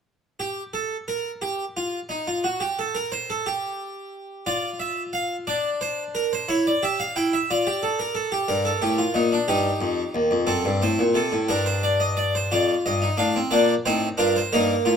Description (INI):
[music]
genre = classical, baroque-style 4-part fugue for harpsichord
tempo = 60 BPM (dotted quarters)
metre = 6/8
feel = straight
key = G minor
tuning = A4 = 441 Hz
[part]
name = harpsichord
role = solo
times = 0.4-15.0 s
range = Eb2 to G5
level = -21 LUFS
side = equal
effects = none
[sound]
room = moderate stone room reverb, RT60 1.4 s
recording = close, detailed microphones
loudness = -21 LUFS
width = side -7 dB against mid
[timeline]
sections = 0.4-12.5 A section; 12.5-15.0 B section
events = none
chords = 0.4 N.C.; 4.5 Dm/F; 5.5 Bbadd9/D; 6.5 C#dim/E; 7.5 Dm/F; 8.5 Gm; 9.5 Ebadd9; 10.5 F#dim; 11.5 Gm; 12.5 F7; 13.5 Bb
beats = | 0.41 1.44 | 2.46 3.47 | 4.48 5.48 | 6.49 7.48 | 8.47 9.47 | 10.48 11.49 | 12.52 13.53 | 14.54